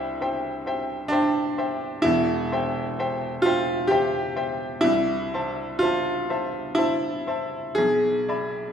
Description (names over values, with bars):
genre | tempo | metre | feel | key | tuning
classical, romantic nocturne for solo piano | 59-67 BPM | 3/4 | rubato | C major, A minor from 4.9 s | A4 = 444 Hz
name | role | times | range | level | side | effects
bright baby grand piano | solo | 0.0-8.7 s | E1 to B5 | -22 LUFS | equal | none
room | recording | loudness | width
wet scoring stage reverb, RT60 1.6 s | recorded in a church or concert hall | -22 LUFS | side -8 dB against mid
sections
0.0-8.7 A section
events
none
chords
0.0 C; 2.1 C/E; 4.9 Am/C; 7.8 E7/B